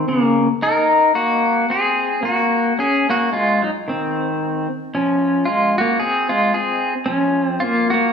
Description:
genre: hawaiian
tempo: 112 BPM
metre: 4/4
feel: swing 58% on 8ths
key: Db major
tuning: A4 = 440 Hz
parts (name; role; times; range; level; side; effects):
- pedal steel guitar; solo; 0.0-8.1 s; Db3 to Bb4; -16 LUFS; left 1 dB; none
room: wet large studio reverb, RT60 1.3 s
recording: band playing live in one room, small room ambience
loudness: -16 LUFS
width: side -6 dB against mid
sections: 0.0-8.1 A section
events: none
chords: 0.0 N.C.; 0.6 Cm7b5; 2.8 Absus4; 3.8 N.C.; 4.9 Dbmaj7; 7.1 Gbmaj7/F

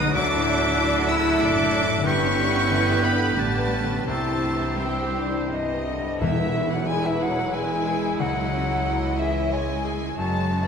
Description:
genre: cinematic, emotional film score for orchestra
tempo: 82-95 BPM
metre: 3/4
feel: rubato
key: unclear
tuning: A4 = 438 Hz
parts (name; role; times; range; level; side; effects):
- clear studio violin section; melody; 0.0-10.7 s; B4 to E6; -30 LUFS; left 2 dB; none
- clear oboe; second line; 0.0-5.8 s; B4 to E5; -30 LUFS; right 1 dB; none
- concert flute; second line; 0.0-10.7 s; D#5 to G6; -30 LUFS; left 2 dB; none
- rich studio violin section; second line; 0.0-10.7 s; F#4 to A5; -32 LUFS; left 2 dB; none
- clear grand piano; accompaniment; 0.0-10.7 s; B1 to C#5; -30 LUFS; left 2 dB; none
- rich studio viola section; accompaniment; 0.0-10.7 s; C#3 to F#4; -30 LUFS; right 4 dB; none
- mellow French horn section; sustained chords; 0.0-10.7 s; C3 to E4; -30 LUFS; left 3 dB; none
- concert harp; arpeggios; 0.0-10.7 s; F#2 to G#5; -33 LUFS; left 6 dB; none
- rich symphonic cello section; bass; 0.0-10.7 s; C#2 to E4; -29 LUFS; right 3 dB; none
- warm studio double bass section; bass; 0.0-10.7 s; E1 to D2; -31 LUFS; right 3 dB; none
- cymbal swell and tam-tam; percussion; 2.1-8.8 s; none; -36 LUFS; left 1 dB; none
- timpani; percussion; 6.2-7.2 s; E2; -32 LUFS; left 1 dB; none
room: wet recital hall reverb, RT60 1.4 s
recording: minimal, uncompressed stereo recording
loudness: -20 LUFS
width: side -6 dB against mid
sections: 0.0-6.2 A section; 6.2-10.7 B section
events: band accent 6.2-6.9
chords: 0.1 Dadd9; 2.0 G; 4.1 C; 6.2 E; 8.2 C#madd9

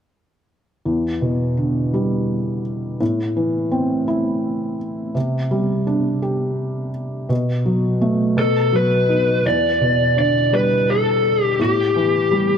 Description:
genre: pop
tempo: 56 BPM (dotted quarters)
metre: 6/8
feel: straight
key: E minor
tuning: A4 = 440 Hz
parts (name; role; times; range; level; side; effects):
- felt-muted upright piano; accompaniment; 0.9-12.6 s; E2 to G4; -19 LUFS; equal; none
- lead guitar through a small cranked amp; melody; 8.4-12.6 s; G4 to D5; -17 LUFS; left 2 dB; overdrive
room: moderate plate reverb, RT60 3.3 s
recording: dark, warm production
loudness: -17 LUFS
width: side -7 dB against mid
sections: 0.9-9.5 A section; 9.5-12.6 B section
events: none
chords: 0.9 Em7; 3.0 Am; 5.2 Csus2; 7.3 B5; 8.4 B; 9.5 Em7; 11.6 A7(no3)

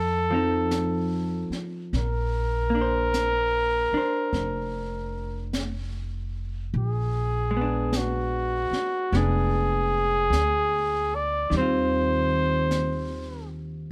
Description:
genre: jazz ballad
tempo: 50 BPM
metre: 4/4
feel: swing 66% on 8ths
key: Bb major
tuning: A4 = 441 Hz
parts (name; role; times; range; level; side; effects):
- breathy trumpet; melody; 0.0-13.5 s; Gb4 to D5; -28 LUFS; equal; none
- upright bass; bass; 0.0-13.9 s; F1 to F2; -31 LUFS; equal; none
- vintage hollow-body jazz guitar; accompaniment; 0.3-13.9 s; Eb3 to C5; -32 LUFS; equal; none
- jazz brush drum kit; drums; 0.7-13.9 s; brushed snare drum, hi-hat, snare drum; -38 LUFS; equal; none
room: light reverb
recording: close, detailed microphones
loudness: -26 LUFS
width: mono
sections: 0.0-1.9 A section; 1.9-13.9 A section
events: none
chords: 0.0 F7; 1.9 Bbadd9; 6.7 Bb7b9; 11.5 Eb69

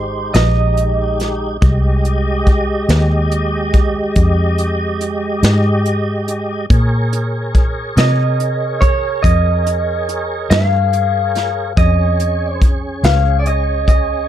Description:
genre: slow blues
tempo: 47 BPM (dotted quarters)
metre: 12/8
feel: straight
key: F minor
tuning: A4 = 437 Hz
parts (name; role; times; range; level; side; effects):
- electric guitar through a small old amp; melody; 0.0-14.3 s; C5 to F5; -18 LUFS; right 1 dB; none
- tonewheel organ; sustained chords; 0.0-14.3 s; Ab3 to Eb5; -21 LUFS; equal; slow rotary speaker, overdrive, chorus vibrato
- vintage muted fingered electric bass; bass; 0.0-14.3 s; Ab1 to C3; -16 LUFS; equal; none
- soft brush drum kit; drums; 0.3-14.1 s; hi-hat, kick drum, snare drum; -15 LUFS; equal; none
room: light reverb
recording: dark, warm production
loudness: -13 LUFS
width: side -11 dB against mid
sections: 0.0-14.3 A section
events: none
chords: 0.0 Fm9; 6.7 Bbm9

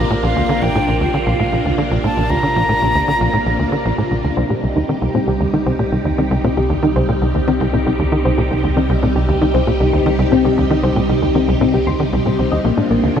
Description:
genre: ambient, sequencer-driven space music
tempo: 116 BPM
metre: 4/4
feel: straight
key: C minor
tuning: A4 = 440 Hz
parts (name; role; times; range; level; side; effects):
- wooden flute; melody; 0.0-3.9 s; F5 to Bb5; -21 LUFS; equal; analog delay
- phased string machine; sustained chords; 0.0-13.2 s; C3 to G4; -20 LUFS; equal; ensemble chorus, phaser
- tight sequencer bass; riff; 0.0-13.2 s; Bb1 to Eb3; -18 LUFS; equal; wide subtle chorus, analog delay
- warm sub bass; bass; 0.0-13.2 s; Bb1 to C2; -24 LUFS; equal; none
- soft round pluck; arpeggios; 4.4-13.0 s; Bb3 to C6; -19 LUFS; moving between left 7 dB and right 1 dB; chorus, auto-pan, analog delay
room: wet huge ambient reverb, RT60 7.4 s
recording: none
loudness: -14 LUFS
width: side -8 dB against mid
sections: 0.0-13.2 A section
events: fade-in on sub bass 0.0-13.2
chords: 0.0 Bbadd9; 4.4 Cm; 12.6 Bbadd9

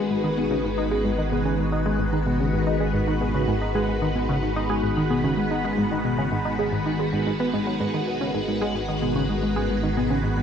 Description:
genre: ambient, sequencer-driven space music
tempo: 111 BPM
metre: 4/4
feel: straight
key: G# minor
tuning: A4 = 440 Hz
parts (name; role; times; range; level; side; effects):
- phased string machine; sustained chords; 0.0-10.4 s; D#3 to B4; -25 LUFS; equal; ensemble chorus, phaser
- tight sequenced synth; riff; 0.0-10.4 s; G#2 to D#4; -25 LUFS; equal; chorus, phaser, analog delay
- analog drone; bass; 0.2-10.4 s; G#1; -30 LUFS; equal; chorus
room: wet huge ambient reverb, RT60 8.1 s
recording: none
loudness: -21 LUFS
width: side -8 dB against mid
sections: 0.0-10.4 A section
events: none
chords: 0.0 G#m7

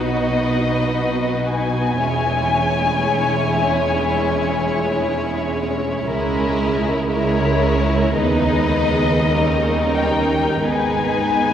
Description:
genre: classical, slow romantic movement for string orchestra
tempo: 45-60 BPM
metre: 4/4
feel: rubato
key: G# minor from 6.1 s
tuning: A4 = 440 Hz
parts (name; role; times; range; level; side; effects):
- dark studio violin section; melody; 0.0-11.5 s; C#5 to G#5; -22 LUFS; left 4 dB; none
- rich studio violin section; second line; 0.0-11.5 s; D#4 to C#5; -23 LUFS; left 1 dB; none
- rich studio viola section; accompaniment; 0.0-11.5 s; G3 to D#4; -23 LUFS; right 2 dB; none
- clear studio cello section; bass; 0.0-11.5 s; C#2 to B2; -24 LUFS; right 2 dB; none
- dark studio double bass section; bass; 0.0-11.5 s; E1 to D#2; -25 LUFS; right 3 dB; none
room: wet cathedral reverb, RT60 6.1 s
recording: recorded in a church or concert hall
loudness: -16 LUFS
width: side -9 dB against mid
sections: 0.0-11.5 A section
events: none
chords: 0.0 B; 2.0 C#m/E; 6.1 A#m7b5/C#; 8.2 G#m/D#; 9.3 D#7; 10.6 G#m

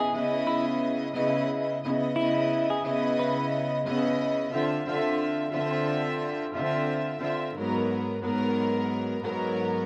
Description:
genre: hip hop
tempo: 89 BPM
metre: 4/4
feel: swing 58% on 16ths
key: C# dorian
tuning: A4 = 440 Hz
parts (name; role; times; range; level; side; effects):
- semi-hollow electric guitar; melody; 0.0-3.4 s; E4 to B4; -32 LUFS; equal; spring reverb, slapback echo
- warm studio string section; accompaniment; 0.0-9.9 s; G#2 to E5; -28 LUFS; equal; none
room: moderate studio reverb, RT60 0.5 s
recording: worn, warbling old tape, cassette tape, vinyl crackle, warbly pitch drift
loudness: -28 LUFS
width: mono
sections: 0.0-9.9 A section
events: none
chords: 0.0 C#m9; 4.5 Dm9; 7.6 G#m9

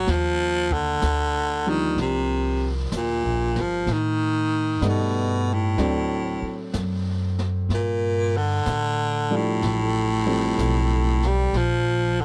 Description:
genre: jazz ballad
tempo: 63 BPM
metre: 4/4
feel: swing 67% on 8ths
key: unclear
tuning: A4 = 442 Hz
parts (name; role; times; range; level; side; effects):
- growling baritone saxophone; melody; 0.0-12.2 s; A2 to G3; -26 LUFS; equal; none
- bright upright piano; accompaniment; 0.0-11.6 s; F3 to D#4; -31 LUFS; equal; none
- upright bass; bass; 0.0-12.2 s; G1 to A2; -27 LUFS; equal; none
- jazz brush drum kit; drums; 0.1-12.2 s; brushed snare drum, hi-hat, kick drum, snare drum; -37 LUFS; equal; none
room: small room ambience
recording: dry, close 1970s-style studio recording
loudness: -23 LUFS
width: mono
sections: 0.0-12.2 A section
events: none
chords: 0.1 Ebmaj7; 3.9 Baug7; 5.8 D7; 7.7 Gsus2; 11.5 Bb5

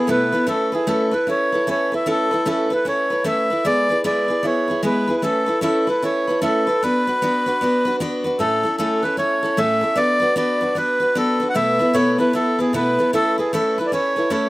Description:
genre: celtic folk, Celtic hornpipe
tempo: 152 BPM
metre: 4/4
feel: swing 62% on 8ths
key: unclear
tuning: A4 = 442 Hz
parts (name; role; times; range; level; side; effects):
- accordion; melody; 0.0-14.5 s; G#4 to F#5; -20 LUFS; equal; none
- picked steel-string acoustic guitar; accompaniment; 0.0-14.5 s; A2 to B4; -20 LUFS; equal; none
room: little or no reverb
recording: recorded outdoors, with no room sound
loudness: -17 LUFS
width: side -19 dB against mid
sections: 0.0-8.4 A section; 8.4-14.5 A section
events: none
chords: 0.5 Aadd9; 3.6 E/G#; 5.2 Aadd9; 6.8 Bm; 8.4 A; 10.0 Bm; 11.5 Esus4/B; 13.1 Aadd9

